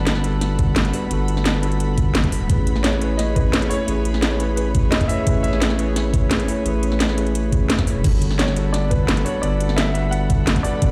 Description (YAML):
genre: liquid drum and bass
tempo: 173 BPM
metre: 4/4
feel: straight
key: G lydian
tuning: A4 = 440 Hz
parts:
  - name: warm grand piano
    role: melody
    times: 0.0-0.5, 2.8-5.9, 8.4-10.9 s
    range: B4 to F#5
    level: -31 LUFS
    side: equal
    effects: vintage 12-bit sampler grit, delay
  - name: bell-like tine electric piano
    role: accompaniment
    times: 0.0-10.9 s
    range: G3 to C#5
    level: -27 LUFS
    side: equal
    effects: delay
  - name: airy breathy pad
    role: sustained chords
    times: 0.0-10.9 s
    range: G#4 to B5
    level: -34 LUFS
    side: equal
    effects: chorus, sidechain pumping
  - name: saturated sub bass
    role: bass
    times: 0.0-10.9 s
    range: D1 to A1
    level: -24 LUFS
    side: equal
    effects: none
  - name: garage drum kit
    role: drums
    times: 0.1-10.9 s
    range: crash cymbal, hi-hat, snare drum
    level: -25 LUFS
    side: equal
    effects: small room ambience
  - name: electronic kick drum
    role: drums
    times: 0.6-10.9 s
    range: none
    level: -22 LUFS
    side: equal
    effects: small room ambience
room: little or no reverb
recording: played on a big sound system in a bare room, large studio reverb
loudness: -19 LUFS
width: mono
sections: 0.0-10.9 A section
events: none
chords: 0.0 Gmaj9; 2.5 Amaj9; 8.0 Gmaj9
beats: 0.07 0.41 0.76 | 1.11 1.46 1.80 2.15 | 2.50 2.84 3.19 3.54 | 3.88 4.23 4.58 4.92 | 5.27 5.62 5.96 6.31 | 6.66 7.00 7.35 7.70 | 8.04 8.39 8.74 9.09 | 9.43 9.78 10.12 10.47 | 10.82